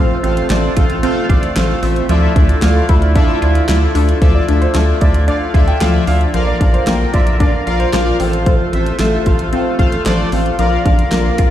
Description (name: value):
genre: synth-pop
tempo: 113 BPM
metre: 4/4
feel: straight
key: D minor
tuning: A4 = 440 Hz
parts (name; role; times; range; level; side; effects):
- analog synth brass; accompaniment; 0.0-11.5 s; C4 to G5; -19 LUFS; left 2 dB; chorus
- warm woodwind section; sustained chords; 0.0-11.5 s; C3 to Bb4; -24 LUFS; equal; none
- resonant blip pluck; arpeggios; 0.0-11.5 s; F3 to F5; -21 LUFS; equal; phaser, ping-pong delay
- rubbery square bass; bass; 0.0-11.5 s; A1 to D2; -16 LUFS; equal; none
- pop drum kit; drums; 0.2-11.5 s; handclaps, hi-hat, kick drum, snare drum; -15 LUFS; equal; none
- warm concert grand piano; second line; 4.3-8.0 s; C5 to G5; -25 LUFS; right 3 dB; ping-pong delay
room: light reverb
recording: played on a big sound system in a bare room, stone room reverb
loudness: -11 LUFS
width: side -12 dB against mid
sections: 0.0-4.2 A section; 4.2-11.5 B section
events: none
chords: 0.0 F/A; 2.1 Dmadd9; 6.3 Bb; 8.2 F/A; 10.6 Bb